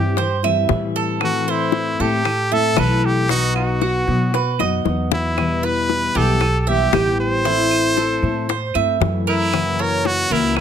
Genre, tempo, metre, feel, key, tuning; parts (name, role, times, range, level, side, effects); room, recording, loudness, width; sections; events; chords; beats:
latin, Cuban son and guajira; 116 BPM; 4/4; straight; A4 = 440 Hz
brilliant trumpet; melody; 0.0-10.6 s; E4 to C5; -21 LUFS; equal
fingerpicked steel-string acoustic guitar; accompaniment; 0.0-10.6 s; B2 to F#4; -23 LUFS; left 6 dB
Cuban tres; arpeggios; 0.0-10.6 s; D#4 to E5; -23 LUFS; right 10 dB
upright bass; bass; 0.0-10.6 s; A1 to B2; -22 LUFS; right 1 dB
bongos; percussion; 0.2-10.6 s; -23 LUFS; left 13 dB
claves; percussion; 0.4-10.6 s; -30 LUFS; right 10 dB
light reverb; close, detailed microphones; -16 LUFS; side -8 dB against mid
0.0-10.6 A section
drum fill 4.6-5.4
0.0 C; 1.2 Am; 3.3 B; 5.4 Em; 7.4 Am; 9.5 F#7
0.18 0.70 | 1.22 1.74 2.26 2.78 | 3.29 3.81 4.33 4.85 | 5.37 5.89 6.41 6.93 | 7.45 7.96 8.48 9.00 | 9.52 10.04 10.56